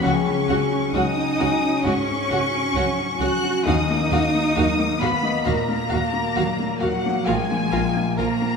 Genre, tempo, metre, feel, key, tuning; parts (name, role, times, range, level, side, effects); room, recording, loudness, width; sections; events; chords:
cinematic, emotional film score for orchestra; 66 BPM; 4/4; rubato; Eb minor; A4 = 440 Hz
rich studio violin section; melody; 0.0-8.6 s; Gb5 to Gb6; -26 LUFS; left 3 dB
rich studio violin section; second line; 0.0-8.3 s; Gb4 to Gb5; -30 LUFS; left 1 dB
felt-muted upright piano; accompaniment; 0.0-8.6 s; Bb1 to F5; -26 LUFS; left 3 dB
rich studio viola section; accompaniment; 0.0-8.3 s; Gb3 to Gb4; -30 LUFS; right 3 dB
concert harp; arpeggios; 0.0-8.6 s; Bb2 to Ab5; -27 LUFS; left 8 dB
rich studio cello section; bass; 0.0-8.6 s; Gb3 to Gb4; -25 LUFS; right 4 dB
rich studio double bass section; bass; 0.0-8.3 s; Bb1 to Eb2; -29 LUFS; right 5 dB
wet scoring stage reverb, RT60 1.9 s; minimal, uncompressed stereo recording; -19 LUFS; side -5 dB against mid
0.0-8.6 A section
0.0 Dbsus4; 3.7 Ebmadd9; 7.3 Bb5